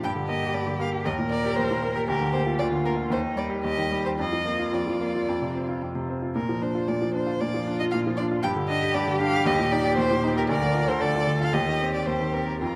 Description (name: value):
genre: quick classical-period movement for piano trio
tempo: 116 BPM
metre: 4/4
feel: rubato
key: Bb major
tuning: A4 = 440 Hz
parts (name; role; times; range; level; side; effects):
- dark violin; melody; 0.0-12.8 s; Bb4 to G5; -32 LUFS; equal; none
- rich cello; second line; 0.0-12.8 s; Eb4 to Bb4; -32 LUFS; equal; none
- bright baby grand piano; accompaniment; 0.0-12.8 s; D2 to G4; -28 LUFS; equal; none
room: moderate recital hall reverb, RT60 1.5 s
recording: close, detailed microphones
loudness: -25 LUFS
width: mono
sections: 0.0-12.8 A section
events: none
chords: 0.0 Gm; 1.1 Eb; 2.1 Bb/D; 3.1 Eb; 4.2 Bb/F; 5.3 F5; 6.3 Bb; 8.4 G5; 9.5 Eb; 10.5 Bb/D; 11.5 Cm/Eb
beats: | 0.04 0.55 1.06 1.57 | 2.08 2.60 3.12 3.65 | 4.19 4.73 5.27 5.81 | 6.35 6.88 7.39 7.91 | 8.43 8.95 9.46 9.98 | 10.49 11.01 11.53 12.06 | 12.61